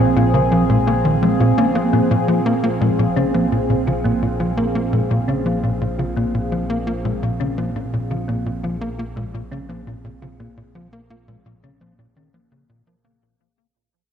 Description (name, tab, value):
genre	ambient, sequencer-driven space music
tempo	85 BPM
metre	4/4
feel	straight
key	unclear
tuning	A4 = 439 Hz
part	sweeping resonant pad	sustained chords	0.0-13.2 s	Bb2 to F5	-21 LUFS	right 2 dB	chorus
part	tight sequencer bass	riff	0.0-13.1 s	Bb2 to Bb3	-20 LUFS	left 1 dB	cassette tape, ping-pong delay
part	analog drone	bass	0.0-13.2 s	Bb1	-30 LUFS	equal	chorus
part	thumb-piano-like synth pluck	arpeggios	0.2-13.1 s	F3 to Bb4	-26 LUFS	moving between left 7 dB and right 2 dB	chorus, auto-pan, ping-pong delay
room	wet spring reverb, RT60 2.3 s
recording	echo-heavy mix, cassette tape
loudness	-17 LUFS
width	side -8 dB against mid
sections	0.0-13.2 A section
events	fade-out 1.9-13.2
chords	0.0 Bbm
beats	0.52 1.22 | 1.93 2.64 3.34 4.05 | 4.75 5.46 6.17 6.87 | 7.58 8.28 8.99 9.70 | 10.40 11.11 11.81 12.52